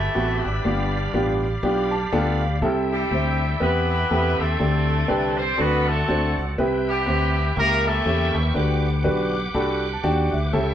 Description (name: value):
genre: uptempo gospel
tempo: 121 BPM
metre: 4/4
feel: swing 58% on 8ths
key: G major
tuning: A4 = 441 Hz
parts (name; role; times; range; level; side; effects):
- warm horn section; melody; 0.0-9.3 s; G3 to C5; -24 LUFS; left 1 dB; none
- bright tonewheel organ; sustained chords; 0.0-10.7 s; A#3 to D6; -31 LUFS; right 2 dB; fast rotary speaker, chorus vibrato
- fingered electric bass; bass; 0.0-10.7 s; G1 to E2; -24 LUFS; equal; none
- warm grand piano; accompaniment; 0.1-10.7 s; G2 to D6; -24 LUFS; equal; none
room: wet studio ambience, RT60 0.5 s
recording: band playing live in one room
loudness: -19 LUFS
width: side -10 dB against mid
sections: 0.0-10.7 A section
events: grand piano fill 1.6-2.6, 9.0-10.5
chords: 0.0 Cmaj7; 0.6 G7; 2.6 C6; 4.6 D7sus4; 5.6 D7; 6.6 Cmaj7; 7.6 C#dim7; 8.6 Gmaj7